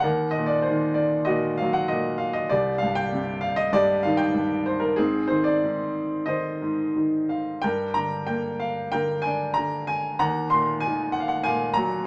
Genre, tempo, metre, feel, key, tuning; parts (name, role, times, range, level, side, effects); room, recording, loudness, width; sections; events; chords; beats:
classical, lyrical solo piano; 85-101 BPM; 4/4; rubato; A4 = 440 Hz
clear concert grand piano; solo; 0.0-12.1 s; C2 to C6; -24 LUFS; equal
wet studio reverb, RT60 0.8 s; -25 LUFS; mono
0.0-12.1 A section
0.0 Ebm; 2.5 Cm; 5.0 Ab; 7.6 Gm; 10.2 Ebmadd9
| 0.04 0.67 1.29 1.90 | 2.51 3.12 3.73 4.34 | 4.97 5.62 6.28 6.97 | 7.63 8.29 8.95 9.59 | 10.23 10.86 11.47